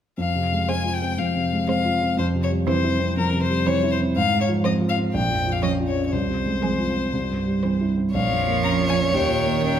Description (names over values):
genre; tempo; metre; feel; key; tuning
quick classical-period movement for piano quartet; 120 BPM; 4/4; straight; F minor; A4 = 440 Hz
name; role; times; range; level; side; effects
clear violin; melody; 0.2-9.8 s; Bb4 to Bb5; -26 LUFS; left 5 dB; none
dark grand piano; accompaniment; 0.2-9.8 s; Bb1 to F4; -22 LUFS; equal; none
clear cello; second line; 0.7-9.8 s; Eb3 to Ab3; -29 LUFS; right 8 dB; none
clear violin; second line; 0.7-9.8 s; Ab4 to Db5; -27 LUFS; equal; none
room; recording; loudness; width
wet recital hall reverb, RT60 1.6 s; minimal, uncompressed stereo recording; -20 LUFS; side -9 dB against mid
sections
0.2-9.8 A section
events
none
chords
0.2 Fm; 2.2 C/F; 4.2 Fm/Ab; 5.1 Bbm; 6.1 Fm/C; 7.1 C; 8.1 Bbm; 9.1 Eb7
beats
| 0.18 0.69 1.19 1.68 | 2.18 2.68 3.17 3.67 | 4.16 4.65 5.14 5.63 | 6.13 6.63 7.13 7.63 | 8.14 8.64 9.14 9.64